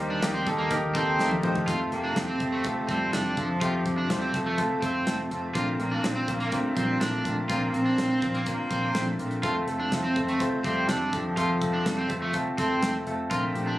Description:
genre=piano-driven pop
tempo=124 BPM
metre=4/4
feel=straight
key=F mixolydian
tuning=A4 = 439 Hz
part: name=rich cello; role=melody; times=0.0-13.8 s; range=F3 to C4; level=-31 LUFS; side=equal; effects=none
part: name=clear grand piano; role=accompaniment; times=0.0-13.8 s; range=Bb2 to C5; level=-28 LUFS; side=left 1 dB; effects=none
part: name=vintage muted fingered electric bass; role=bass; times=0.0-13.7 s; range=F1 to Eb2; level=-35 LUFS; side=equal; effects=none
part: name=crunchy overdriven guitar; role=riff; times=0.1-13.8 s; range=A3 to F4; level=-30 LUFS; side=right 2 dB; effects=none
part: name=modern studio drum kit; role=drums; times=0.2-13.7 s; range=hi-hat, kick drum, snare drum, toms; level=-32 LUFS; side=equal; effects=none
room=light reverb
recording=recorded on a phone in the room, club ambience, compression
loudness=-24 LUFS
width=side -16 dB against mid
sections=0.0-1.7 A section; 1.7-13.8 B section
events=drum fill 1.2-1.7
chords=0.0 Eb; 1.7 F; 5.6 Bbadd9; 9.4 F

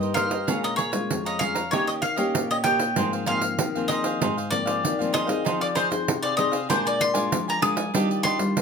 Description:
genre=samba and choro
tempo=96 BPM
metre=4/4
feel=straight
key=unclear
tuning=A4 = 440 Hz
part: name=bowl-back mandolin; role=melody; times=0.0-8.6 s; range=C5 to Eb6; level=-25 LUFS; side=left 2 dB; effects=none
part: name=cavaquinho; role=accompaniment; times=0.0-8.4 s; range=D4 to Bb5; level=-30 LUFS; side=right 6 dB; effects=none
part: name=nylon-string guitar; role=accompaniment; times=0.0-8.6 s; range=F2 to Ab4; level=-27 LUFS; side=left 3 dB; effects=none
part: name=pandeiro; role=percussion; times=0.0-8.6 s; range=none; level=-28 LUFS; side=right 4 dB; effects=none
room=moderate studio ambience, RT60 0.4 s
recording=none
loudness=-22 LUFS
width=side -6 dB against mid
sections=0.0-8.6 A section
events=none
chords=0.5 Bbm7; 1.7 Eb7; 3.0 Ab69; 5.5 Fm7; 6.7 Bb7; 7.9 Ebmaj9

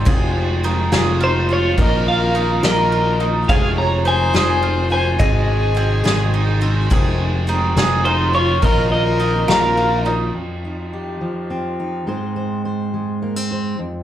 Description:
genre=indie folk with a building arrangement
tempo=70 BPM (dotted quarters)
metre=6/8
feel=straight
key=F minor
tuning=A4 = 440 Hz
part: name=picked steel-string acoustic guitar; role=accompaniment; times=0.0-10.4 s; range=F2 to Ab4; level=-25 LUFS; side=left 4 dB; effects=slapback echo
part: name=mellow tonewheel organ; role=sustained chords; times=0.0-10.3 s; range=C3 to F4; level=-28 LUFS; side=right 2 dB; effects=none
part: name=bowl-back mandolin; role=arpeggios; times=0.0-10.3 s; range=C4 to Bb4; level=-24 LUFS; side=right 3 dB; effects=slapback echo
part: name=picked electric bass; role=bass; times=0.0-10.3 s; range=F1 to Bb1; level=-20 LUFS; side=equal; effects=none
part: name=soft-mallet drum kit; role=drums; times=0.1-10.2 s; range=kick drum, ride cymbal, snare drum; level=-22 LUFS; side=equal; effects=none
part: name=twelve-string electric guitar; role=melody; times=1.2-10.1 s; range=C5 to Bb5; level=-21 LUFS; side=right 1 dB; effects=tremolo, slapback echo, digital delay
part: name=dark fiddle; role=second line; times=1.2-10.1 s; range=Eb4 to Db5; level=-22 LUFS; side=left 2 dB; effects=slapback echo
part: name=fingerpicked steel-string acoustic guitar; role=accompaniment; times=10.3-14.0 s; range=F2 to C5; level=-22 LUFS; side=right 1 dB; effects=slapback echo
room=light reverb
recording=live gig heard through the venue's PA, club reverb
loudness=-15 LUFS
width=side -11 dB against mid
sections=0.0-10.3 A section; 10.3-14.0 B section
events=none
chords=0.1 Fm7; 1.8 Bbsus4; 3.5 Fm7; 5.2 Ab; 6.9 Fm7; 8.6 Bbsus4; 10.3 F5; 12.1 Ab

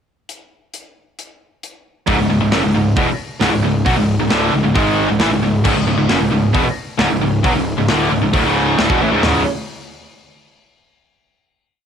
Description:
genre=heavy metal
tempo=134 BPM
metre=4/4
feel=straight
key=C# minor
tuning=A4 = 440 Hz
part: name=tight metal drum kit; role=drums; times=0.3-9.3 s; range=crash cymbal, hi-hat, kick drum, snare drum, toms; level=-21 LUFS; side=left 1 dB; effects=none
part: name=high-gain distorted guitar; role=riff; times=2.1-9.4 s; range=C#2 to G#3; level=-18 LUFS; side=left 9 dB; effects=distortion
part: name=tight distorted guitar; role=riff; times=2.1-9.4 s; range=C#2 to G#3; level=-18 LUFS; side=right 8 dB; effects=distortion
part: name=fuzz picked electric bass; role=bass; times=2.1-9.4 s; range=C#1 to B1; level=-22 LUFS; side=equal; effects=overdrive
room=small room ambience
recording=home recording on cassette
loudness=-13 LUFS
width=side -8 dB against mid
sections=0.3-2.1 pickup bar; 2.1-9.2 riff; 9.2-11.0 final chord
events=none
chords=0.3 N.C.; 2.1 C#m; 9.2 C#5

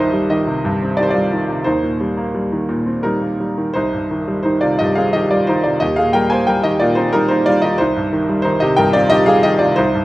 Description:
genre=classical, lyrical solo piano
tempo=89 BPM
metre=3/4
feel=rubato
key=C minor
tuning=A4 = 441 Hz
part: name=bright grand piano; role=solo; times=0.0-10.0 s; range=C2 to Ab5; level=-14 LUFS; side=equal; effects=none
room=light reverb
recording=close, detailed microphones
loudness=-14 LUFS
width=side -17 dB against mid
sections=0.0-10.0 A section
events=none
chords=0.0 Cm; 1.6 Eb6; 3.7 Cm; 5.8 Eb6; 7.8 Cm7

